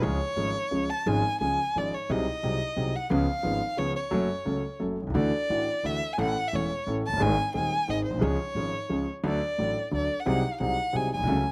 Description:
tango; 176 BPM; 3/4; rubato; A4 = 440 Hz
warm violin; second line; 0.0-11.5 s; B#4 to A5; -32 LUFS; equal; slapback echo
warm concert grand piano; accompaniment; 0.0-11.4 s; D#1 to A4; -31 LUFS; equal
upright bass; bass; 0.0-11.4 s; E1 to D#2; -36 LUFS; equal
little or no reverb; recorded outdoors, with no room sound; -28 LUFS; mono
0.0-11.5 A section
violin solo 0.0-11.5
0.0 C#; 2.1 G#7/B#; 3.1 C#7; 4.1 F#m; 5.2 Dadd9; 6.2 A; 7.2 G#; 8.2 C#; 9.2 D; 10.3 G#7/B#
| 0.04 0.38 0.72 | 1.07 1.42 1.76 | 2.10 2.44 2.77 | 3.11 3.45 3.79 | 4.13 4.47 4.81 | 5.16 5.50 5.85 | 6.19 6.53 6.87 | 7.21 7.54 7.88 | 8.21 8.55 8.89 | 9.24 9.59 9.93 | 10.27 10.61 10.94 | 11.28

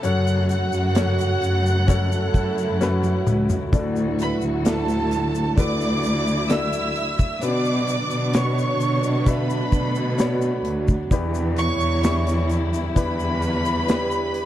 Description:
pop ballad; 65 BPM; 4/4; straight; D major; A4 = 444 Hz
warm French horn section; second line; 0.0-14.5 s; D4 to A4; -29 LUFS; right 6 dB; tape echo
clear concert grand piano; accompaniment; 0.0-14.5 s; A2 to E5; -29 LUFS; left 5 dB
warm chamber string section; sustained chords; 0.0-14.5 s; C#3 to C#5; -32 LUFS; left 1 dB
rich studio cello section; bass; 0.0-14.3 s; C#2 to B2; -23 LUFS; equal
modern studio drum kit; drums; 0.0-14.5 s; hi-hat, kick drum, snare drum, toms; -21 LUFS; equal
tube shaker; percussion; 0.0-14.3 s; -42 LUFS; left 14 dB
warm studio violin section; melody; 0.1-14.5 s; A4 to F#6; -27 LUFS; right 1 dB
little or no reverb; dry, close 1970s-style studio recording; -19 LUFS; side -12 dB against mid
0.0-14.5 A section
drum fill 2.8-3.7
0.0 F#m; 3.7 D; 7.4 Bmadd9; 11.1 Em7
| 0.04 0.96 1.88 2.81 | 3.73 4.65 5.58 6.50 | 7.42 8.35 9.27 10.19 | 11.11 12.04 12.96 13.88

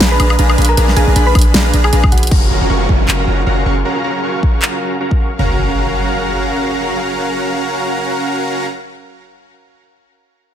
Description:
future bass; 156 BPM; 4/4; swing 56% on 16ths, half-time; F# major; A4 = 442 Hz
thumb-piano-like synth pluck; melody; 0.0-2.3 s; F#4 to B5; -20 LUFS; equal; chorus, sidechain pumping, ping-pong delay
muted studio string section; sustained chords; 0.0-8.7 s; F#3 to E#5; -25 LUFS; left 1 dB; sidechain pumping
dense compressed supersaw; riff; 0.0-8.7 s; C#4 to C#6; -17 LUFS; right 1 dB; sidechain pumping, low-pass filter, ping-pong delay
warm 808-style bass; bass; 0.0-6.5 s; F#1 to A#1; -14 LUFS; equal; sidechain pumping
pop drum kit; drums; 0.0-4.7 s; crash cymbal, handclaps, hi-hat, snare drum, woodblock; -17 LUFS; equal
electronic kick drum; drums; 1.4-5.2 s; -12 LUFS; equal
downlifter and impact; sound effects; 2.3-8.7 s; -23 LUFS; equal
light reverb, digital ambience; -12 LUFS; side -10 dB against mid
0.0-2.3 A section; 2.3-5.4 B section; 5.4-8.5 C section
drop 0.0-2.3; drum fill 2.1; filter sweep on supersaw synth 2.3-5.4
0.0 A#7b9; 2.3 F#maj7
0.01 0.39 | 0.78 1.16 1.54 1.93 | 2.31 2.70 3.08 3.47 | 3.85 4.24 4.62 5.00 | 5.39 5.78 6.16 6.54 | 6.93 7.31 7.70 8.08

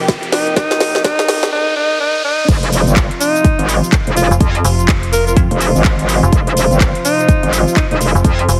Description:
bass house; 125 BPM; 4/4; swing 60% on 16ths; F minor; A4 = 439 Hz
bright symphonic string section; sustained chords; 0.0-8.6 s; C3 to G4; -26 LUFS; equal; sidechain pumping, low-pass filter
riser; sound effects; 0.0-2.5 s; -27 LUFS; equal
deep dark ambient pad; texture; 0.0-8.6 s; C4 to F5; -28 LUFS; equal; chorus, built-in reverb, sidechain pumping
electronic kick drum; drums; 0.1-8.4 s; -16 LUFS; equal
house drum kit; drums; 0.1-8.6 s; cabasa, crash cymbal, handclaps, hi-hat, snare drum; -22 LUFS; equal
bright alto saxophone; melody; 0.3-8.0 s; Eb4 to Bb4; -20 LUFS; equal; digital delay
metallic wobble bass; bass; 2.5-8.5 s; F1 to F2; -17 LUFS; equal; chorus, overdrive, sidechain pumping
metallic FM bass; bass; 4.3-8.6 s; F1 to F2; -16 LUFS; equal; tube saturation, sidechain pumping
light reverb; heavily compressed radio sound, multiband compression, high-pass filter; -14 LUFS; mono
0.0-2.5 A section; 2.5-8.6 B section
build-up 0.0-2.5; drum fill 0.0-1.5; riser 0.0-2.5; drop 2.5-8.6
0.0 F5
0.09 | 0.57 1.05 1.53 2.01 | 2.49 2.97 3.45 3.93 | 4.41 4.89 5.37 5.85 | 6.33 6.81 7.29 7.77 | 8.25

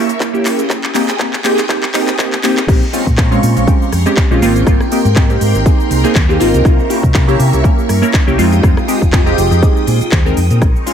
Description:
filtered disco house; 121 BPM; 4/4; swing 55% on 16ths; A4 = 440 Hz
funky polysynth comp; accompaniment; 0.0-10.9 s; Ab3 to Bb4; -15 LUFS; right 1 dB; chorus, phaser, sidechain pumping, low-pass filter, analog delay
phased string machine; sustained chords; 0.0-10.9 s; F4 to Eb6; -22 LUFS; equal; ensemble chorus, phaser, sidechain pumping, low-pass filter
hollow-body short-scale fingered electric bass; bass; 0.0-10.7 s; F1 to C3; -14 LUFS; equal; tube saturation, sidechain pumping, high-pass filter, low-pass filter
house drum kit; drums; 0.1-10.9 s; crash cymbal, handclaps, hi-hat, rim click, shaker; -21 LUFS; equal; sidechain pumping on hats, sidechain pumping on perc, sidechain pumping on cymbals
electronic kick drum; drums; 0.2-10.7 s; -12 LUFS; equal; high-pass filter on kick
light reverb, digital ambience; echo-heavy mix; -10 LUFS; side -8 dB against mid
0.0-2.7 A section; 2.7-10.9 B section
build-up 0.0-2.7; drum fill 0.0-2.7; drop 2.7-10.9
0.5 Fm9; 2.7 Bbm9; 4.4 Abmaj9; 6.7 C7b9; 8.4 Fm9
0.20 | 0.70 1.20 1.69 2.19 | 2.68 3.18 3.67 4.17 | 4.67 5.16 5.66 6.16 | 6.65 7.15 7.64 8.14 | 8.63 9.13 9.63 10.12 | 10.62

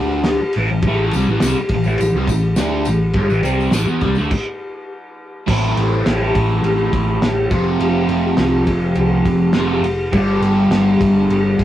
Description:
garage rock duo or trio; 103 BPM; 4/4; straight; A minor; A4 = 440 Hz
crunchy overdriven guitar; riff; 0.0-11.6 s; F2 to G4; -17 LUFS; equal; phaser
hollow-body short-scale picked electric bass; bass; 0.0-11.6 s; F1 to E2; -22 LUFS; equal
cloth-damped thuddy drum kit; drums; 0.2-11.6 s; crash cymbal, kick drum, ride cymbal, snare drum; -20 LUFS; left 1 dB
tambourine; percussion; 1.1-4.2 s; -34 LUFS; left 4 dB
light reverb; rough rehearsal-room recording, warm saturation; -14 LUFS; side -12 dB against mid
0.0-5.5 A section; 5.5-11.6 B section
stop 4.3-5.5
0.4 Am; 7.5 F; 10.1 G
0.26 | 0.83 1.41 1.99 2.57 | 3.15 3.73 4.31 4.89 | 5.47 6.06 6.64 7.22 | 7.80 8.39 8.97 9.55 | 10.13 10.72 11.30

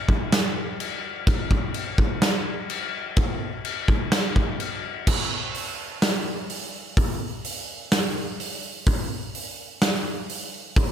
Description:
rock; 126 BPM; 4/4; straight
huge arena drum kit; drums; 0.1-10.9 s; crash cymbal, hi-hat, kick drum, snare drum; -23 LUFS; equal
little or no reverb; -23 LUFS; side -9 dB against mid
0.0-5.1 A section; 5.1-10.9 B section
0.32 0.80 | 1.27 1.75 2.22 2.70 | 3.17 3.65 4.12 4.60 | 5.07 5.55 6.02 6.49 | 6.97 7.44 7.92 8.39 | 8.87 9.34 9.81 10.29 | 10.76

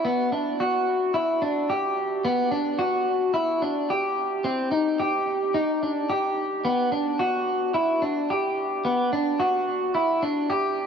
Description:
dream pop; 109 BPM; 4/4; straight; G major; A4 = 439 Hz
electric guitar at the edge of break-up; solo; 0.0-10.9 s; B3 to G4; -22 LUFS; equal; wide subtle chorus, tape echo
wet huge ambient reverb, RT60 4.9 s; nothing above 7.7 kHz; -22 LUFS; side -7 dB against mid
0.0-10.9 A section
| 0.04 0.59 1.14 1.69 | 2.24 2.79 3.34 3.89 | 4.44 4.99 5.54 6.09 | 6.64 7.20 7.75 8.30 | 8.85 9.40 9.95 10.50

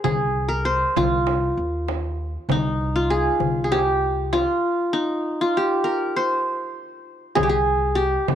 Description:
Arabic maqam ensemble; 98 BPM; 4/4; straight; C maqam bayati; A4 = 438 Hz
qanun; melody; 0.0-8.3 s; Eb4 to C5; -21 LUFS; equal
frame drum; percussion; 0.0-8.3 s; -29 LUFS; right 14 dB
upright bass; bass; 0.1-8.3 s; C2 to Eb2; -26 LUFS; equal
darbuka; percussion; 0.1-8.3 s; -30 LUFS; left 11 dB
light reverb, small room ambience; 1960s-style stereo with parts hard left and right; -20 LUFS; side -10 dB against mid
0.0-7.4 A section
break 4.9-7.4
| 0.05 0.66 1.27 1.88 | 2.49 3.10 3.71 4.32 | 4.93 5.54 6.15 6.76 | 7.37 7.98

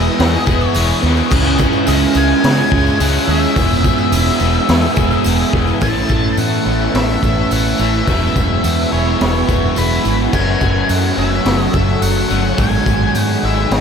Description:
rock, shoegaze and dream pop; 106 BPM; 4/4; straight; E major; A4 = 442 Hz
octave-fuzz lead guitar; melody; 0.0-13.8 s; B4 to A5; -22 LUFS; left 2 dB; distortion, tape echo
evolving wavetable pad; sustained chords; 0.0-13.8 s; G#4 to F#6; -26 LUFS; left 1 dB; chorus, built-in reverb
electric guitar through a small old amp; arpeggios; 0.0-13.8 s; E3 to G#4; -26 LUFS; left 1 dB
crunchy overdriven guitar; riff; 0.0-13.8 s; E2 to C#4; -22 LUFS; right 1 dB; harmonic tremolo
overdriven electric guitar; riff; 0.0-13.8 s; E2 to G#4; -21 LUFS; left 9 dB; lush chorus
raw garage guitar; riff; 0.0-13.8 s; F#2 to E4; -21 LUFS; right 10 dB; overdrive, reverse reverb
vintage muted fingered electric bass; bass; 0.0-13.8 s; E1 to C#3; -18 LUFS; equal
raw garage drum kit; drums; 0.2-13.8 s; crash cymbal, hi-hat, kick drum, snare drum; -19 LUFS; equal
tambourine; percussion; 0.5-13.8 s; -35 LUFS; right 12 dB
moderate huge ambient reverb, RT60 7.3 s; dreamy mix soaked in reverb; -12 LUFS; side -6 dB against mid
0.0-5.8 A section; 5.8-13.8 B section
0.0 Emaj7; 1.3 C#madd9; 3.6 Emaj7; 5.8 Aadd9; 8.1 Eadd9; 10.3 F#m; 12.6 G#m7
0.19 0.75 | 1.32 1.88 2.44 3.00 | 3.56 4.13 4.69 5.25 | 5.82 6.38 6.94 7.51 | 8.07 8.64 9.20 9.76 | 10.33 10.89 11.46 12.02 | 12.59 13.15 13.71

